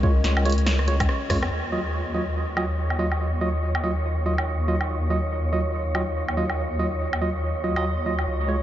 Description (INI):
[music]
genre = deep dubstep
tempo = 142 BPM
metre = 4/4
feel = swing 59% on 16ths, half-time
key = Eb minor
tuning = A4 = 440 Hz
[part]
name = dark analog pad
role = sustained chords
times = 0.0-8.6 s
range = Db4 to F5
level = -37 LUFS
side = left 2 dB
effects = chorus
[part]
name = bright tine electric piano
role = stabs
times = 0.0-8.6 s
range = Gb3 to Eb5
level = -27 LUFS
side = right 2 dB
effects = dub echo
[part]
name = deep soft wobble bass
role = bass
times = 0.0-8.6 s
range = Db2 to F2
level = -25 LUFS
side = equal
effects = chorus
[part]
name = electronic kick drum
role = drums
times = 0.0-1.4 s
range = none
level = -24 LUFS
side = equal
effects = none
[part]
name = deep house drum kit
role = drums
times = 0.2-8.3 s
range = hi-hat, rim click, snare drum, woodblock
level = -31 LUFS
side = equal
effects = low-pass filter on hats, low-pass filter on snare, low-pass filter on perc, low-pass filter on room
[part]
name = wind-like tuned noise texture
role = texture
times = 2.1-8.6 s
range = Db5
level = -34 LUFS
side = right 2 dB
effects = built-in reverb
[sound]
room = moderate huge ambient reverb, RT60 8.2 s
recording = dreamy mix soaked in reverb, nothing above 7.6 kHz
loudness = -22 LUFS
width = side -12 dB against mid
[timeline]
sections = 0.0-1.5 A section; 1.5-8.6 B section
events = drum fill 0.7-1.5; band accent 1.4; filter sweep on analog synth pad 1.5-8.6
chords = 0.0 Db; 1.5 Ebmadd9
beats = 0.24 0.67 1.09 | 1.51 1.93 2.36 2.78 | 3.20 3.62 4.05 4.47 | 4.89 5.32 5.74 6.16 | 6.58 7.00 7.43 7.85 | 8.27